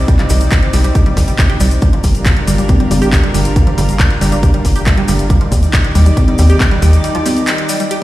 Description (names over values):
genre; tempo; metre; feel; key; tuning
uplifting trance; 138 BPM; 4/4; straight; G minor; A4 = 440 Hz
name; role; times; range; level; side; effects
lush unison pad; sustained chords; 0.0-8.0 s; C3 to D5; -19 LUFS; equal; chorus, sidechain pumping
tight sequenced synth; arpeggios; 0.1-8.0 s; F3 to G4; -20 LUFS; right 1 dB; chorus, sidechain pumping, dub echo
electronic kick drum; drums; 0.1-6.7 s; none; -12 LUFS; equal; none
house drum kit; drums; 0.1-8.0 s; congas, handclaps, hi-hat; -19 LUFS; equal; none
cabasa; percussion; 0.1-8.0 s; none; -28 LUFS; left 3 dB; none
tight sequencer bass; bass; 0.3-7.0 s; G1 to Eb2; -11 LUFS; equal; sidechain pumping
room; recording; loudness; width
light reverb; played on a big sound system in a bare room, large studio reverb; -10 LUFS; side -16 dB against mid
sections
0.0-8.0 A section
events
break 7.0-8.0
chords
0.0 Cmadd9; 1.8 Gm7; 5.3 Ebmaj7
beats
| 0.08 0.52 0.95 1.39 | 1.82 2.26 2.69 3.13 | 3.56 4.00 4.43 4.87 | 5.30 5.74 6.17 6.61 | 7.04 7.47 7.91